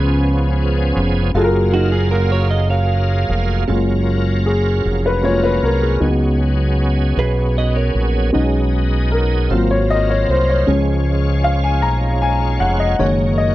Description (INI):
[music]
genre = gospel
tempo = 52 BPM (dotted quarters)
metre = 6/8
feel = straight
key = F# major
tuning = A4 = 440 Hz
[part]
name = warm upright piano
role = accompaniment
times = 0.0-13.5 s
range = C#3 to A#5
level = -19 LUFS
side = left 1 dB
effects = none
[part]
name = bright tonewheel organ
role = sustained chords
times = 0.0-13.5 s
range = E#3 to E#5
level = -23 LUFS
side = right 2 dB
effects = slow rotary speaker, overdrive, chorus vibrato
[part]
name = fingered electric bass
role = bass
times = 0.0-13.5 s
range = E#1 to C#2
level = -17 LUFS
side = equal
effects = none
[part]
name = clean electric guitar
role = second line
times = 1.7-3.6, 7.2-8.3 s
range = D#4 to E#5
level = -22 LUFS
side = right 6 dB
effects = none
[sound]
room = little or no reverb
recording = dry, close 1970s-style studio recording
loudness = -14 LUFS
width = side -16 dB against mid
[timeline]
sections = 0.0-3.7 A section; 3.7-13.5 B section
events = upright piano solo 3.7-13.5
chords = 0.0 C#7; 1.3 F#maj9; 3.7 F#maj7; 6.0 C#7sus4; 8.3 B6; 9.5 G#13; 10.7 C#; 13.0 F#6